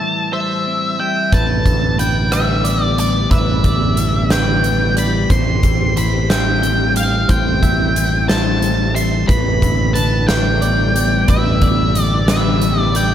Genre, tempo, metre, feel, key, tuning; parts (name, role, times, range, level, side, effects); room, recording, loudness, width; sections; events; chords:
post-rock; 60 BPM (dotted quarters); 6/8; straight; A minor; A4 = 439 Hz
octave-fuzz lead guitar; melody; 0.0-13.1 s; D5 to C6; -19 LUFS; left 1 dB; distortion, slapback echo, analog delay
electric guitar at the edge of break-up; arpeggios; 0.0-13.1 s; A2 to C4; -23 LUFS; left 2 dB
twelve-string electric guitar; arpeggios; 0.0-13.1 s; B4 to G5; -27 LUFS; right 4 dB; slapback echo, analog delay
soft additive organ-like pad; sustained chords; 2.2-13.1 s; E3 to G4; -27 LUFS; equal; ensemble chorus, built-in reverb
growling fingered electric bass; bass; 1.3-13.1 s; A1; -18 LUFS; equal; overdrive
huge arena drum kit; drums; 1.3-13.1 s; hi-hat, kick drum, rim click, snare drum; -18 LUFS; equal
moderate concert hall reverb, RT60 2.0 s; big arena sound; -13 LUFS; side -10 dB against mid
0.0-13.1 A section
0.0 Am7; 1.3 Em7/A; 5.3 Am7; 9.3 Em7/A